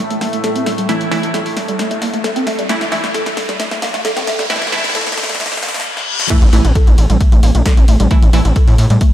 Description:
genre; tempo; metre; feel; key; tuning
driving peak-time techno; 133 BPM; 4/4; straight; unclear; A4 = 440 Hz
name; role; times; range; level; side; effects
woody wave-folded pluck; riff; 0.0-9.0 s; G3 to A4; -21 LUFS; equal; ensemble chorus, sidechain pumping, analog delay
deep dark ambient pad; drone; 0.0-5.9 s; A2 to A3; -26 LUFS; equal; chorus, built-in reverb, sidechain pumping
riser, reverse cymbal and impact; sound effects; 1.1-8.1 s; none; -23 LUFS; left 1 dB; none
punchy analog drum machine; drums; 0.1-9.1 s; crash cymbal, hi-hat, ride cymbal, snare drum; -22 LUFS; equal; none
wavetable chord stab; stabs; 0.9-8.4 s; E3 to E4; -22 LUFS; right 2 dB; sidechain pumping, analog delay
electronic kick drum; drums; 6.3-9.1 s; none; -11 LUFS; equal; none
gritty driven synth bass; bass; 6.4-9.0 s; A1 to A2; -12 LUFS; equal; sidechain pumping
room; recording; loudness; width
moderate church reverb, RT60 2.9 s; dreamy mix soaked in reverb, high-pass filter; -12 LUFS; side -12 dB against mid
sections
0.0-6.3 A section; 6.3-9.1 B section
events
build-up 0.0-6.3; drum fill 0.0-5.9, 6.0-6.3; filter sweep on synth arpeggio sound 0.0-6.3; filter sweep on synth stab 0.0-6.3; filter sweep 0.0-6.3; riser 1.1-5.9; reverse cymbal 5.4-6.3; drop 6.3-9.1; impact 6.3-8.1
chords
0.0 A5

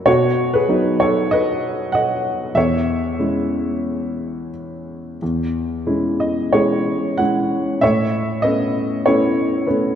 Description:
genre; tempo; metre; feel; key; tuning
classical, lyrical solo piano; 85-99 BPM; 4/4; rubato; E major; A4 = 440 Hz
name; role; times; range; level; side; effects
warm grand piano; solo; 0.0-10.0 s; E2 to F#5; -17 LUFS; equal; none
room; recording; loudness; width
wet concert hall reverb, RT60 2.6 s; dark, warm production; -16 LUFS; side -9 dB against mid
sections
0.0-5.2 A section; 5.2-10.0 B section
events
none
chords
0.1 B; 2.6 E6; 7.8 Aadd9

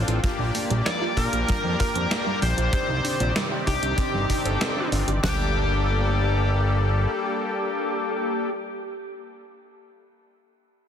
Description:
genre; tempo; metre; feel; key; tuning
synthwave; 96 BPM; 4/4; straight; G minor; A4 = 439 Hz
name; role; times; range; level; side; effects
brassy analog pad; sustained chords; 0.0-8.5 s; C3 to D5; -30 LUFS; left 1 dB; chorus
soft round pluck; arpeggios; 0.0-5.5 s; F3 to C5; -33 LUFS; right 4 dB; chorus, tape echo
analog synth brass; stabs; 0.0-8.5 s; Bb3 to A4; -31 LUFS; left 3 dB; chorus, cassette tape, tape echo
fat analog bass; bass; 0.0-7.1 s; G1 to Bb2; -24 LUFS; equal; sidechain pumping
gated 80s digital drum machine; drums; 0.1-5.2 s; hi-hat, snare drum; -30 LUFS; equal; gated reverb, gated reverb snare
big rock drum kit; drums; 0.2-5.4 s; kick drum, ride cymbal, snare drum, toms; -29 LUFS; equal; soft clipping on kick
smooth overdriven lead guitar; melody; 0.9-8.5 s; G4 to D5; -29 LUFS; left 1 dB; ping-pong delay
FM electric piano with soft pad layer; second line; 0.9-8.8 s; G4 to D5; -40 LUFS; right 2 dB; none
room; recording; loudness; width
light reverb, small room ambience; dense, heavily limited modern master; -21 LUFS; side -8 dB against mid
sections
0.0-5.2 A section; 5.2-7.7 B section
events
none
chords
0.2 Bb6; 2.7 Cmadd9; 5.2 Gmadd9

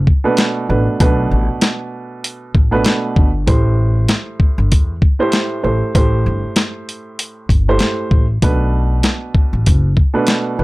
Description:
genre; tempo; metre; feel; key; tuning
hip hop, boom-bap hip-hop; 97 BPM; 4/4; swing 56% on 16ths; A minor; A4 = 440 Hz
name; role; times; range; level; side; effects
upright bass; bass; 0.0-10.6 s; F#1 to E2; -16 LUFS; equal; none
dusty soul sampler-style drum kit; drums; 0.1-10.4 s; hi-hat, kick drum, snare drum; -14 LUFS; equal; none
dark upright piano; accompaniment; 0.2-10.6 s; A2 to C5; -19 LUFS; right 2 dB; high-pass filter, low-pass filter
room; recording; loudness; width
little or no reverb; none; -13 LUFS; side -21 dB against mid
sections
0.0-10.6 A section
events
none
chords
0.0 Bm7; 3.5 Am7; 8.4 Bm7

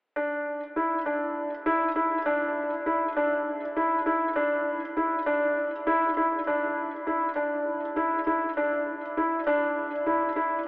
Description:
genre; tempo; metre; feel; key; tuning
contemporary instrumental, contemporary; 200 BPM (eighths); 7/8; straight; unclear; A4 = 440 Hz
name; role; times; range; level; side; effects
felt-muted upright piano; arpeggios; 0.2-10.6 s; D4 to E4; -24 LUFS; equal; none
room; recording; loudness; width
wet huge ambient reverb, RT60 8.7 s; in a vast, echoing space, telephone sound; -24 LUFS; side -27 dB against mid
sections
0.2-10.7 A section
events
none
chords
none

